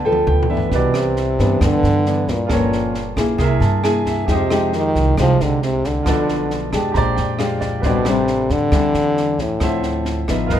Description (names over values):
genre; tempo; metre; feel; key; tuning
bossa nova; 135 BPM; 4/4; straight; C major; A4 = 440 Hz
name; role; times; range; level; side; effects
warm French horn; melody; 0.0-10.3 s; A2 to B3; -20 LUFS; left 1 dB; none
bright grand piano; accompaniment; 0.0-10.6 s; E4 to B5; -25 LUFS; right 4 dB; none
nylon-string guitar; accompaniment; 0.0-10.6 s; G2 to A4; -21 LUFS; left 2 dB; none
upright bass; bass; 0.0-10.6 s; G1 to G2; -21 LUFS; right 1 dB; none
compact cocktail drum kit; drums; 0.1-10.6 s; kick drum, rim click, snare drum, toms; -25 LUFS; equal; none
room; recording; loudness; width
light reverb; minimal, uncompressed stereo recording; -15 LUFS; side -10 dB against mid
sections
0.7-10.6 A section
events
grand piano fill 0.0-0.7, 3.4-4.3, 6.5-7.8, 10.1-10.6; drum fill 0.0-0.7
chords
0.0 G9; 0.7 Cmaj9; 2.5 Gm7b5; 3.4 C7b13; 4.3 Fm9; 6.1 Bm7b5; 6.9 Bb13; 7.8 Am11; 9.6 Dm9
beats
0.27 | 0.71 1.16 1.61 2.05 | 2.50 2.94 3.39 3.83 | 4.28 4.72 5.17 5.62 | 6.06 6.50 6.95 7.39 | 7.84 8.28 8.73 9.17 | 9.62 10.06 10.50